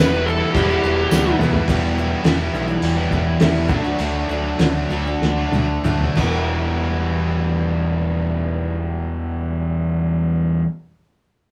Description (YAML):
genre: classic rock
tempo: 90-106 BPM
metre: 4/4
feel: straight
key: E minor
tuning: A4 = 440 Hz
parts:
  - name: dark smooth lead guitar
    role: melody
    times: 0.0-1.4 s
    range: G4 to B4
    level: -22 LUFS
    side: equal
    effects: overdrive
  - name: picked steel-string acoustic guitar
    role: accompaniment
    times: 0.0-10.7 s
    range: E2 to G4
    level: -31 LUFS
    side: equal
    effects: none
  - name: tonewheel organ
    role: sustained chords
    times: 0.0-1.7 s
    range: G3 to F#5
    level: -35 LUFS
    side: equal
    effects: none
  - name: cranked stack guitar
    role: riff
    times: 0.0-10.7 s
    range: E2 to E4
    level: -27 LUFS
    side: equal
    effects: overdrive
  - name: overdriven semi-hollow guitar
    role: riff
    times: 0.0-10.7 s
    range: E2 to G4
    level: -26 LUFS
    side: equal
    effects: none
  - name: fuzz picked electric bass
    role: bass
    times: 0.0-10.6 s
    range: E1 to E2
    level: -26 LUFS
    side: equal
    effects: overdrive
  - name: cloth-damped thuddy drum kit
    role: drums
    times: 0.5-6.3 s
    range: crash cymbal, hi-hat, kick drum, snare drum, toms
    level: -23 LUFS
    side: equal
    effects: none
  - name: tambourine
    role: percussion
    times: 1.1-1.2 s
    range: none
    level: -36 LUFS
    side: equal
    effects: none
room: moderate studio reverb, RT60 0.6 s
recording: band playing live in one room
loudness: -20 LUFS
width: mono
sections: 0.0-1.7 A section; 1.7-6.5 B section; 6.5-9.2 C section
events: drum fill 1.1-1.7, 5.2-6.5; slowing down 1.7-6.5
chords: 0.0 Em; 0.6 Emadd9; 1.7 Em; 3.7 D; 6.2 Em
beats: 0.56 1.12 | 1.69 2.25 2.82 3.40 | 3.99 4.59 5.21 5.84 | 6.50 7.17 7.83 8.50